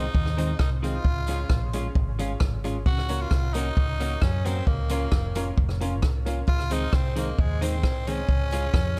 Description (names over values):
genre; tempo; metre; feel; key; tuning
ska; 132 BPM; 4/4; straight; Db major; A4 = 440 Hz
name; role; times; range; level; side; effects
growling tenor saxophone; melody; 0.0-9.0 s; Ab3 to Gb4; -35 LUFS; equal; dub echo
clean electric guitar; accompaniment; 0.0-8.7 s; Eb3 to Gb4; -37 LUFS; equal; lush chorus
warm upright piano; stabs; 0.0-9.0 s; C4 to Db5; -38 LUFS; equal; dub echo
hollow-body short-scale fingered electric bass; bass; 0.0-9.0 s; F1 to Gb2; -30 LUFS; equal; none
vintage drum kit; drums; 0.1-8.8 s; hi-hat, kick drum, rim click; -28 LUFS; equal; none
tambourine; percussion; 0.4-9.0 s; none; -52 LUFS; equal; none
room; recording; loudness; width
little or no reverb; none; -25 LUFS; mono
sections
0.0-9.0 A section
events
none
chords
0.0 Ab; 1.0 Db; 2.9 Gb; 4.7 Bbm; 6.5 Ab; 8.3 Db